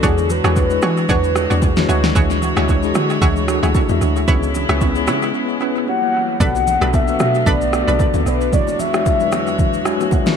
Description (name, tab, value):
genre	amapiano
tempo	113 BPM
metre	4/4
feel	swing 55% on 16ths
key	unclear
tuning	A4 = 444 Hz
part	warm velvety synth lead	melody	0.0-1.9, 5.9-10.4 s	G#4 to F#5	-21 LUFS	left 2 dB	chorus, tape echo
part	mellow tine electric piano	accompaniment	0.0-10.4 s	F#3 to G#5	-21 LUFS	left 1 dB	medium stereo tremolo, tape echo
part	clear studio string section	sustained chords	0.0-10.4 s	E2 to C#5	-25 LUFS	equal	sidechain pumping
part	analog pluck	stabs	0.0-8.0 s	D4 to C#5	-25 LUFS	right 3 dB	chorus, tape echo
part	deep log drum bass	bass	0.0-8.5 s	B1 to E3	-20 LUFS	equal	none
part	smooth R&B drum kit	drums	0.0-10.4 s	kick drum, rim click, shaker, snare drum	-20 LUFS	equal	tape echo
part	congas and bongos	percussion	0.0-10.4 s	none	-28 LUFS	left 6 dB	none
room	little or no reverb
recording	echo-heavy mix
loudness	-14 LUFS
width	side -7 dB against mid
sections	0.0-10.4 A section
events	break 5.3-6.4; tine electric piano fill 9.6-10.4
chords	0.0 E13; 1.9 Dmaj9#11; 4.3 C#m7; 5.9 F#7b9; 6.4 Bm7; 8.5 E13